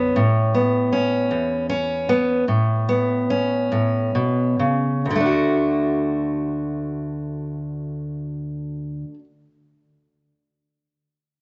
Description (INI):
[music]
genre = folk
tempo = 43-54 BPM (dotted quarters)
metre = 6/8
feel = straight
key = D major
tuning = A4 = 442 Hz
[part]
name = fingerpicked steel-string acoustic guitar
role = accompaniment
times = 0.0-9.2 s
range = D2 to F#4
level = -22 LUFS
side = equal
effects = none
[sound]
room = light reverb, studio reverb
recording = nothing above 8.0 kHz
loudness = -22 LUFS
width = mono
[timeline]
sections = 0.0-5.1 A section; 5.1-7.9 B section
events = slowing down 0.2-5.1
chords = 0.2 Aadd9; 5.1 D